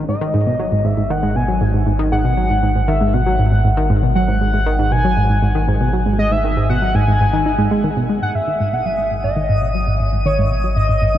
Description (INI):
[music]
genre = ambient, sequencer-driven space music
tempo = 118 BPM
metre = 4/4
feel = straight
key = G# minor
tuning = A4 = 441 Hz
[part]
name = tight sequenced synth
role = riff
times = 0.0-11.2 s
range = G#2 to D#4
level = -17 LUFS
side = equal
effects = chorus, tape echo
[part]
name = warm sub bass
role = bass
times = 0.0-11.2 s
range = G#1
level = -20 LUFS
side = equal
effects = none
[part]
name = pulse-width lead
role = melody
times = 0.1-11.2 s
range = C#5 to G#5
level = -21 LUFS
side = left 1 dB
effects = chorus, tape echo
[part]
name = twinkling granular texture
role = texture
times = 8.9-11.2 s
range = D#6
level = -27 LUFS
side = equal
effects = built-in reverb
[sound]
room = moderate huge ambient reverb, RT60 7.8 s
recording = dark, warm production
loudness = -14 LUFS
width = side -12 dB against mid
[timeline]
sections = 0.0-8.2 A section; 8.2-11.2 B section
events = filter sweep on synth arpeggio sound 8.2-11.2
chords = 0.0 G#7(no3)